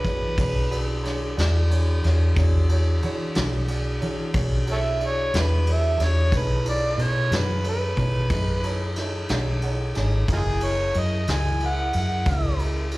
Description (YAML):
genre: slow blues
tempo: 61 BPM (dotted quarters)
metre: 12/8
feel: straight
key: unclear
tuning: A4 = 440 Hz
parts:
  - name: overdriven harmonica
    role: melody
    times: 0.0-12.6 s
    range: D#4 to G#5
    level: -26 LUFS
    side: right 1 dB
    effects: slapback echo
  - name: warm upright piano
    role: accompaniment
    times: 0.0-13.0 s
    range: D4 to G#5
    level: -32 LUFS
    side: right 2 dB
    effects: slapback echo
  - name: vintage muted fingered electric bass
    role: bass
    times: 0.0-13.0 s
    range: F#1 to E3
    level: -23 LUFS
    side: equal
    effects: none
  - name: vintage brush drum kit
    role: drums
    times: 0.0-13.0 s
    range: kick drum, ride cymbal, snare drum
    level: -28 LUFS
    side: equal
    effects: none
room: little or no reverb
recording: live gig heard through the venue's PA, club reverb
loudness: -20 LUFS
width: side -19 dB against mid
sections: 0.0-13.0 A section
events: harmonica solo 0.0-13.0; upright piano fill 9.3-10.3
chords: 0.0 E13; 6.3 B13; 10.3 F#13